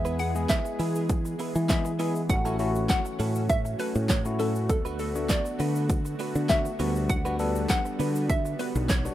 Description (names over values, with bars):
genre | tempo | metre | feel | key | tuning
dance-pop | 100 BPM | 4/4 | straight | A major | A4 = 441 Hz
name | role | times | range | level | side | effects
hollow square pluck | melody | 0.0-9.1 s | A4 to F#5 | -31 LUFS | equal | chorus, dub echo
bell-like tine electric piano | accompaniment | 0.0-9.1 s | G3 to A4 | -32 LUFS | left 3 dB | sidechain pumping
soft supersaw | sustained chords | 0.0-9.1 s | D3 to G#4 | -35 LUFS | right 1 dB | sidechain pumping
fingered electric bass | bass | 0.0-9.1 s | A1 to E3 | -28 LUFS | equal | sidechain pumping
direct-recorded clean electric guitar | riff | 0.1-9.1 s | F#3 to B4 | -37 LUFS | right 5 dB | analog chorus
pop drum kit | drums | 0.1-9.1 s | handclaps, hi-hat, kick drum, shaker, snare drum | -28 LUFS | equal | overdrive
tube shaker | percussion | 0.1-9.1 s | none | -50 LUFS | right 5 dB | none
room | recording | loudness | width
little or no reverb | rough home demo mix | -24 LUFS | side -13 dB against mid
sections
0.0-9.1 A section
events
none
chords
0.0 E; 2.3 A6; 4.7 D6; 6.8 Gmaj7/D